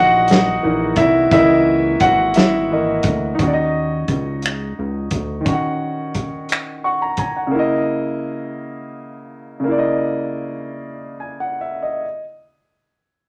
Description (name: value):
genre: slow six-eight R&B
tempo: 58 BPM (dotted quarters)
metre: 6/8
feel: straight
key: C# dorian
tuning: A4 = 440 Hz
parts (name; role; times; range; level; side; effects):
- warm concert grand piano; accompaniment; 0.0-12.2 s; C#3 to C#6; -20 LUFS; equal; none
- fat analog bass; bass; 0.0-5.4 s; G#1 to D#2; -27 LUFS; equal; none
- warm soul drum kit; drums; 0.3-7.3 s; finger snaps, hi-hat, kick drum, snare drum; -21 LUFS; equal; none
room: moderate studio reverb, RT60 0.8 s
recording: none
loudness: -18 LUFS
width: mono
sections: 0.0-3.4 A section; 3.4-12.0 B section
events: grand piano solo 0.0-3.4; grand piano fill 6.5-7.5; slowing down 7.5-12.0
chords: 0.0 C#m69; 3.4 D#m7; 7.5 C#m69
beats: 0.28 | 1.32 2.35 | 3.39 4.42 | 5.46 6.49 | 7.52 8.57 | 9.65 10.80